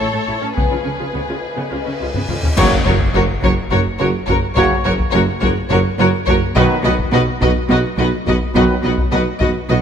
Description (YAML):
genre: cinematic, epic orchestral film score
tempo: 210 BPM (eighths)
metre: 7/8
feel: straight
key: F# major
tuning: A4 = 441 Hz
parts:
  - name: warm symphonic violin section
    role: melody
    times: 0.0-9.8 s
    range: B4 to D#5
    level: -23 LUFS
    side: left 5 dB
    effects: none
  - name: rich symphonic violin section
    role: second line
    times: 0.0-9.8 s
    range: G#4 to B4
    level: -24 LUFS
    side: left 2 dB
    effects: none
  - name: rich symphonic viola section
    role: accompaniment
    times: 0.0-9.8 s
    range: A3 to F#4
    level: -23 LUFS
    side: equal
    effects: none
  - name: rich studio double bass section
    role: bass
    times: 0.0-9.8 s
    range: F#1 to C#2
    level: -22 LUFS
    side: right 3 dB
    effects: none
  - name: warm symphonic cello section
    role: bass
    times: 0.0-9.8 s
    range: F#2 to C#3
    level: -22 LUFS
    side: right 2 dB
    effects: none
  - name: mellow French horn section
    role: sustained chords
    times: 0.6-8.8 s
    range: E#3 to F#4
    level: -27 LUFS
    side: left 4 dB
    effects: none
  - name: taiko ensemble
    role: drums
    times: 0.6-9.8 s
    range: none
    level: -22 LUFS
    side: left 1 dB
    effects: none
  - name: cymbal swell and impact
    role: sound effects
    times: 1.9-4.6 s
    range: none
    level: -27 LUFS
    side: left 1 dB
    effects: none
  - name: bright trombone section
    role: sustained chords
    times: 2.6-8.8 s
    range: C#3 to F#3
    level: -26 LUFS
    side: right 4 dB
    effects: none
  - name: mellow trumpet section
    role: stabs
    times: 2.6-8.8 s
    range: B4 to C#5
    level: -25 LUFS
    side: left 1 dB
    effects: none
  - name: mellow tuba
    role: bass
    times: 2.6-9.8 s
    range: F#1 to B1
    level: -22 LUFS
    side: right 3 dB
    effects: none
  - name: clash cymbals and concert bass drum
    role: percussion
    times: 2.6-3.7 s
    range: none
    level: -25 LUFS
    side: left 1 dB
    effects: none
  - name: timpani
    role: percussion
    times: 2.6-3.4 s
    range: F#2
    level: -25 LUFS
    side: equal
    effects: none
room: moderate concert hall reverb, RT60 2.4 s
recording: none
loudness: -14 LUFS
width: side -8 dB against mid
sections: 0.0-2.6 A section; 2.6-9.8 B section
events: cymbal swell 1.9-2.6; drum fill 2.1-2.6; band accent 2.6-3.1; impact 2.6-4.6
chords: 0.0 A; 0.6 C#7; 2.6 F#; 6.6 B